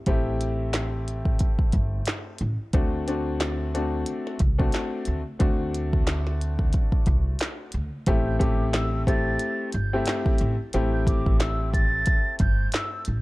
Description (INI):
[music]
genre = hip hop, boom-bap hip-hop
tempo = 90 BPM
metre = 4/4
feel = swing 57% on 16ths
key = A dorian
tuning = A4 = 440 Hz
[part]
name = warm upright piano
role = accompaniment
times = 0.1-13.0 s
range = A3 to G4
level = -29 LUFS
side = left 2 dB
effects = high-pass filter, low-pass filter
[part]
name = upright bass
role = bass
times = 0.1-13.2 s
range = G1 to D2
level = -27 LUFS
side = equal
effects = none
[part]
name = minimal click drum kit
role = drums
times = 0.1-13.2 s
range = handclaps, hi-hat, kick drum, snare drum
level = -24 LUFS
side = equal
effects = none
[part]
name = breathy concert flute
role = melody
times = 8.3-13.0 s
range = D6 to A6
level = -30 LUFS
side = right 1 dB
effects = high-pass filter, low-pass filter
[sound]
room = little or no reverb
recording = dark, warm production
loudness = -22 LUFS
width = side -20 dB against mid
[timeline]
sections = 0.0-8.1 A section; 8.1-13.2 B section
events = none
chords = 0.0 Am7; 2.7 D7; 8.1 Am7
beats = | 0.07 0.73 1.40 2.07 | 2.73 3.40 4.07 4.74 | 5.40 6.07 6.74 7.40 | 8.07 8.73 9.40 10.07 | 10.73 11.40 12.07 12.73